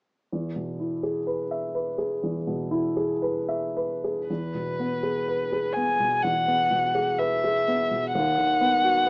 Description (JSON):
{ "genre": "classical, slow romantic movement for piano quartet", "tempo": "63 BPM", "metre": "4/4", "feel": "rubato", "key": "E major", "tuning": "A4 = 440 Hz", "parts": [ { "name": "warm grand piano", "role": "accompaniment", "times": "0.3-9.1 s", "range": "D#2 to E5", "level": "-26 LUFS", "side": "equal", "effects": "none" }, { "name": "muted violin", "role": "melody", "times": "4.3-9.1 s", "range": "B4 to G#5", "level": "-23 LUFS", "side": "left 1 dB", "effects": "none" } ], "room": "light reverb", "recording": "small speaker sound", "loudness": "-23 LUFS", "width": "side -27 dB against mid", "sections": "0.3-4.3 A section; 4.3-9.1 B section", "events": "none", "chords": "0.3 E; 8.1 B/D#" }